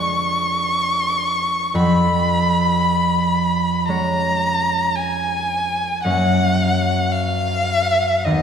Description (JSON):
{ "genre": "classical, romantic duo for violin and harp", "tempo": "56 BPM", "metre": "4/4", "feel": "rubato", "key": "F# major", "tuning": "A4 = 440 Hz", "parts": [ { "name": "warm violin", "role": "melody", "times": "0.0-8.4 s", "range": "D#5 to C#6", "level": "-19 LUFS", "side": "left 1 dB", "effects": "none" }, { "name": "concert harp", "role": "accompaniment", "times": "0.0-8.4 s", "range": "D#2 to C#5", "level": "-20 LUFS", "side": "right 1 dB", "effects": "none" } ], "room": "wet scoring stage reverb, RT60 1.9 s", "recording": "heard from further back in the room", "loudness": "-16 LUFS", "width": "side -7 dB against mid", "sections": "0.0-8.4 A section", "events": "none", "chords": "0.0 Fdim7; 1.8 C#7/E#; 6.0 F#" }